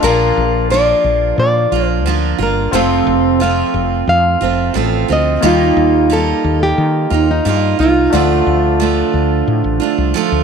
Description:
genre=acoustic pop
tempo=89 BPM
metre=4/4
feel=straight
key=Bb major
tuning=A4 = 440 Hz
part: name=flamenco guitar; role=melody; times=0.0-10.1 s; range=Eb4 to F5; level=-17 LUFS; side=left 1 dB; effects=none
part: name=picked steel-string acoustic guitar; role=accompaniment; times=0.0-10.4 s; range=F2 to F4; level=-16 LUFS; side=right 10 dB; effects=none
part: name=warm concert grand piano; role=accompaniment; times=0.0-10.4 s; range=A3 to F5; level=-21 LUFS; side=left 15 dB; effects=none
part: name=woody fretless electric bass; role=bass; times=0.0-10.4 s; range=F1 to Eb3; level=-17 LUFS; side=left 2 dB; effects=none
room=light reverb, studio reverb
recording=1960s-style stereo with parts hard left and right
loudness=-11 LUFS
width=side -6 dB against mid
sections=0.0-10.4 A section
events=none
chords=0.0 Bb; 2.7 F; 5.4 Ebadd9; 8.1 Dm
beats=| 0.03 0.70 1.38 2.05 | 2.73 3.40 4.08 4.75 | 5.43 6.10 6.78 7.45 | 8.13 8.80 9.48 10.15

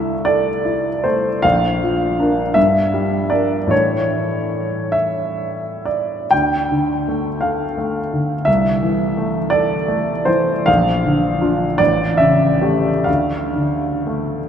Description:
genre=classical, romantic nocturne for solo piano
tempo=39-58 BPM (dotted quarters)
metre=12/8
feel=rubato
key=unclear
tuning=A4 = 442 Hz
part: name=warm grand piano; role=solo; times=0.0-14.5 s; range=A1 to G5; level=-15 LUFS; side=equal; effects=none
room=wet cathedral reverb, RT60 5.5 s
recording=in a vast, echoing space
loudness=-15 LUFS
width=side -8 dB against mid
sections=0.0-14.5 A section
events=none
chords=0.0 Am/C; 1.4 Bb; 2.6 Gm; 3.7 A; 6.3 Dm; 8.5 Am/C; 10.7 Bb; 11.8 A7; 13.1 Dm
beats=0.26 | 1.44 2.56 3.71 4.93 | 6.32 7.42 8.47 9.52 | 10.68 11.79 13.07

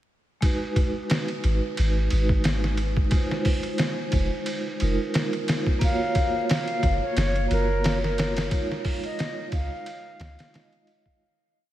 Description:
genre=trip hop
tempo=89 BPM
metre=4/4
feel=swing 55% on 16ths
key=G# dorian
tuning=A4 = 442 Hz
part: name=vibraphone with medium mallets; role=accompaniment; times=0.4-11.2 s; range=G#3 to D#5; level=-29 LUFS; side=right 1 dB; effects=tremolo, tape echo
part: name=trip hop sampler-style drum kit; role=drums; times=0.4-11.2 s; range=hi-hat, kick drum, ride cymbal, snare drum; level=-26 LUFS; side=equal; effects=studio ambience
part: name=soft 808-style bass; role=bass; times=1.4-10.4 s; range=F1 to C#2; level=-25 LUFS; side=equal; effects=none
part: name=concert flute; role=melody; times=5.8-11.1 s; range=A#4 to E#5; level=-29 LUFS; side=left 1 dB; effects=dub echo
room=moderate huge ambient reverb, RT60 8.0 s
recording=dreamy mix soaked in reverb, vinyl crackle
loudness=-22 LUFS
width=side -13 dB against mid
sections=0.4-11.2 groove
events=fade-out 7.6-11.2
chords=0.4 G#m7; 3.1 Fm7; 5.8 F#maj7; 8.5 C#add9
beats=| 0.43 1.10 1.77 2.45 | 3.12 3.80 4.47 5.14 | 5.82 6.49 7.17 7.84 | 8.52 9.19 9.86 10.54

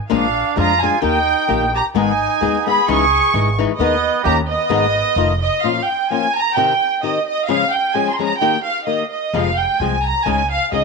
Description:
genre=mexican folk, mariachi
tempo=130 BPM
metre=2/4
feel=swing 55% on 8ths, rubato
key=G# minor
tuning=A4 = 439 Hz
part: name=dark studio violin section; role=melody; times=0.1-10.8 s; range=D#5 to C#6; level=-17 LUFS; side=right 2 dB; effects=none
part: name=mellow trumpet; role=second line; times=0.1-5.4 s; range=B3 to G#4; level=-21 LUFS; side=right 14 dB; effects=none
part: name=flamenco guitar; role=accompaniment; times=0.1-10.8 s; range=F2 to G#4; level=-20 LUFS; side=left 12 dB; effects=none
part: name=upright bass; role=bass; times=0.1-5.5, 9.3-10.8 s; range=F1 to E#2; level=-23 LUFS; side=right 2 dB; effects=none
room=moderate spring reverb, RT60 1.7 s, small room ambience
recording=1960s-style stereo with parts hard left and right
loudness=-15 LUFS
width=side -3 dB against mid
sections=0.0-5.6 A section; 5.6-10.8 B section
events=none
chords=0.1 A#7; 1.0 D#; 2.0 G#m; 2.9 C#madd9; 3.8 G#m/D#; 4.3 D#7; 4.7 G#m; 5.2 F7; 5.6 Bbm; 6.6 Cm; 7.5 Db; 8.4 Eb; 9.3 Fm; 10.3 Dbsus2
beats=| 0.11 0.57 | 1.03 1.49 | 1.96 2.43 | 2.89 3.34 | 3.80 4.25 | 4.71 5.17 | 5.64 6.11 | 6.57 7.03 | 7.48 7.94 | 8.40 8.87 | 9.34 9.80 | 10.27 10.73

